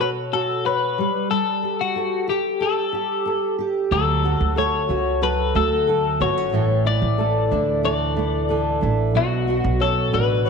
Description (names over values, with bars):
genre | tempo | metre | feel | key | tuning
acoustic pop | 92 BPM | 4/4 | straight | D major | A4 = 440 Hz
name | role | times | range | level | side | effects
twelve-string electric guitar | melody | 0.0-10.5 s | F#4 to D5 | -22 LUFS | left 8 dB | lush chorus
fingerpicked steel-string acoustic guitar | accompaniment | 0.0-10.5 s | A2 to C#5 | -24 LUFS | right 2 dB | double-tracked left and right
flamenco guitar | arpeggios | 3.9-10.5 s | E3 to D4 | -28 LUFS | right 10 dB | slapback echo
upright bass | bass | 3.9-10.5 s | G1 to D2 | -23 LUFS | right 2 dB | none
room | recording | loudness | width
moderate echo chamber reverb, RT60 1.7 s, studio ambience | 1960s-style stereo with parts hard left and right | -18 LUFS | side -5 dB against mid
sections
0.0-10.5 A section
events
none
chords
0.0 Bsus2; 1.0 Gsus2; 3.9 Dmaj7; 6.5 Asus4; 9.2 Bmadd9